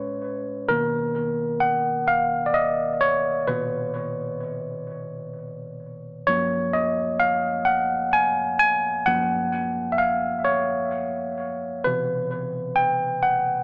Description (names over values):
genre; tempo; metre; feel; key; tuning
R&B; 43 BPM (dotted quarters); 6/8; straight; B lydian; A4 = 445 Hz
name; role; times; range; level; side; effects
tine electric piano; solo; 0.0-13.6 s; F#2 to G#5; -21 LUFS; equal; analog delay
room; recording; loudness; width
light reverb; echo-heavy mix, small speaker sound; -21 LUFS; side -34 dB against mid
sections
0.7-13.6 A section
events
tine electric piano solo 0.7-13.6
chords
0.0 Amaj9; 0.7 Bmaj7; 6.3 F#maj7; 11.9 Cmaj7